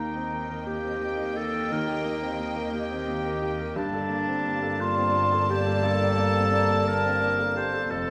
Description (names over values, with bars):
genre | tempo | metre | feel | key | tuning
cinematic | 58 BPM (dotted quarters) | 6/8 | rubato | G minor | A4 = 440 Hz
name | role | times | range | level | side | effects
rich studio violin section | melody | 0.0-8.1 s | G5 to A5 | -38 LUFS | equal | none
clear clarinet | second line | 0.0-8.1 s | D4 to C5 | -30 LUFS | equal | none
dark studio violin section | second line | 0.0-8.1 s | C5 to Eb5 | -36 LUFS | equal | none
felt-muted upright piano | accompaniment | 0.0-8.1 s | Eb2 to Bb4 | -35 LUFS | equal | none
warm studio viola section | accompaniment | 0.0-8.1 s | Bb3 to C4 | -40 LUFS | equal | none
dark studio double bass section | bass | 0.0-8.1 s | F1 to Eb2 | -36 LUFS | equal | none
warm studio cello section | bass | 0.0-8.1 s | F2 to Eb3 | -36 LUFS | equal | none
room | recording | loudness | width
wet concert hall reverb, RT60 1.9 s | none | -26 LUFS | mono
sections
0.0-8.1 A section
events
none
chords
0.0 Eb; 3.8 Gmadd9